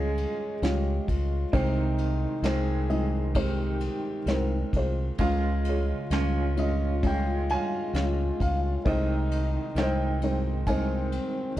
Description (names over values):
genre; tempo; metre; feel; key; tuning
acoustic folk-pop ballad; 66 BPM; 4/4; straight; Ab major; A4 = 443 Hz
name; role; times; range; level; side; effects
felt-muted upright piano; melody; 0.0-11.6 s; C2 to Ab5; -29 LUFS; equal; none
warm French horn; second line; 0.0-11.6 s; C4 to Ab4; -35 LUFS; left 3 dB; none
electric guitar through a small old amp; arpeggios; 0.0-11.6 s; Eb3 to F4; -36 LUFS; right 4 dB; tremolo
fingered electric bass; bass; 0.0-11.6 s; C2 to Db2; -28 LUFS; equal; none
soft brush drum kit; drums; 0.2-11.6 s; kick drum, ride cymbal, snare drum; -33 LUFS; equal; none
room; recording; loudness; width
light reverb; dark, warm production; -24 LUFS; side -14 dB against mid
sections
0.0-11.6 A section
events
none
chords
0.0 Db; 1.5 Ab/C; 5.2 Db; 8.9 Ab/C